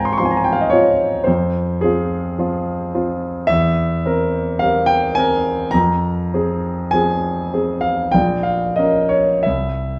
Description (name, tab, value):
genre	classical, romantic nocturne for solo piano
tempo	42-56 BPM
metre	4/4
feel	rubato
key	F minor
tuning	A4 = 441 Hz
part	warm concert grand piano	solo	0.0-10.0 s	Bb1 to Db6	-18 LUFS	equal	none
room	wet large studio reverb, RT60 0.8 s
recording	heard from further back in the room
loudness	-18 LUFS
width	mono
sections	0.0-10.0 A section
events	none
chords	0.0 Fm/Ab; 1.3 Fm; 3.5 C7/E; 5.7 Fm; 8.1 Bbmadd11; 9.4 C